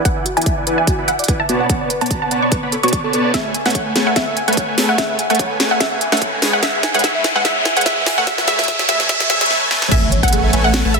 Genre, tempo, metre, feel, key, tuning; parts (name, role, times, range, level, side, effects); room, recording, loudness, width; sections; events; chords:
future bass; 146 BPM; 4/4; swing 55% on 16ths, half-time; A major; A4 = 440 Hz
dense compressed supersaw; riff; 0.0-11.0 s; G#3 to B5; -20 LUFS; equal; sidechain pumping, low-pass filter
wide unison pluck; melody; 0.1-11.0 s; E5 to C#6; -19 LUFS; equal; sidechain pumping, ping-pong delay
soft round pluck; arpeggios; 0.1-11.0 s; F#4 to G#5; -25 LUFS; right 2 dB; chorus, sidechain pumping, digital delay
electronic kick drum; drums; 0.1-10.3 s; -21 LUFS; equal
trap drum kit; drums; 0.1-11.0 s; crash cymbal, hi-hat, snare drum, toms; -20 LUFS; equal
riser and impact; sound effects; 5.2-11.0 s; -23 LUFS; equal
saturated sub bass; bass; 9.9-11.0 s; A1; -18 LUFS; equal; sidechain pumping
moderate lush hall reverb, RT60 2.0 s, digital ambience; dense, heavily limited modern master, high-pass filter; -14 LUFS; side -4 dB against mid
0.0-9.9 A section; 9.9-11.0 B section
build-up 0.0-9.9; filter sweep on supersaw synth 0.0-9.9; filter sweep on synth pluck 0.0-9.9; filter sweep 0.0-9.9; drum fill 3.3-9.5, 9.5-9.9; riser 5.2-9.5; drop 9.9-11.0; impact 9.9-11.0
0.0 E9; 1.5 Bm7; 3.3 Amaj13; 6.4 E; 8.1 Amaj13